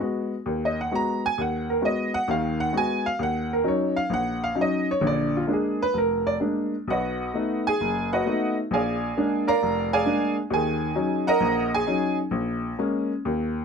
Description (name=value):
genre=solo jazz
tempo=132 BPM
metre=4/4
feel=swing 68% on 8ths, rubato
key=Eb minor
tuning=A4 = 440 Hz
part: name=clear upright piano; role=solo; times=0.0-13.6 s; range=F1 to Bb5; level=-22 LUFS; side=equal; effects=none
room=light reverb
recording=close, detailed microphones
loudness=-22 LUFS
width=side -6 dB against mid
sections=0.0-13.6 A section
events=upright piano solo 0.0-13.6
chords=0.0 Abm7; 3.2 Ebm7; 5.0 Bb7; 6.9 B7; 8.7 Bb7; 10.5 Ebm7; 12.3 Bbm7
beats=0.01 0.47 0.93 | 1.38 1.83 2.29 2.74 | 3.19 3.65 4.10 4.55 | 5.01 5.47 5.94 6.41 | 6.88 7.34 7.80 8.26 | 8.71 9.16 9.61 10.06 | 10.51 10.96 11.42 11.87 | 12.33 12.79 13.25